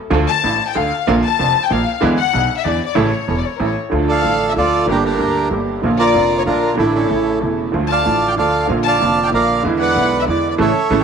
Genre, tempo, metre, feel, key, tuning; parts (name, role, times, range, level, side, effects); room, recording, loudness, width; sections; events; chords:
tango; 189 BPM; 3/4; rubato; D harmonic minor; A4 = 440 Hz
bright upright piano; accompaniment; 0.1-11.0 s; E1 to G4; -19 LUFS; right 2 dB
dark symphonic string section; stabs; 0.1-11.0 s; G#3 to Bb4; -27 LUFS; right 9 dB
upright bass; bass; 0.1-11.0 s; E1 to E2; -24 LUFS; equal
warm chamber violin section; second line; 0.3-11.0 s; A4 to A5; -20 LUFS; left 12 dB
bandoneon; melody; 4.1-11.0 s; C#4 to A5; -17 LUFS; right 4 dB; tape echo
moderate echo chamber reverb, RT60 1.2 s, studio ambience; 1960s-style stereo with parts hard left and right; -14 LUFS; side -6 dB against mid
0.0-3.9 A section; 3.9-11.0 A section
violin section solo 0.0-3.9; band accent 10.6-11.0
0.1 Dm; 1.1 Bb; 2.0 E7; 3.0 A; 3.9 Dm; 4.9 Gm; 5.8 Bb; 6.8 Asus4; 7.1 A; 7.7 Dm; 8.7 Bb; 9.6 E7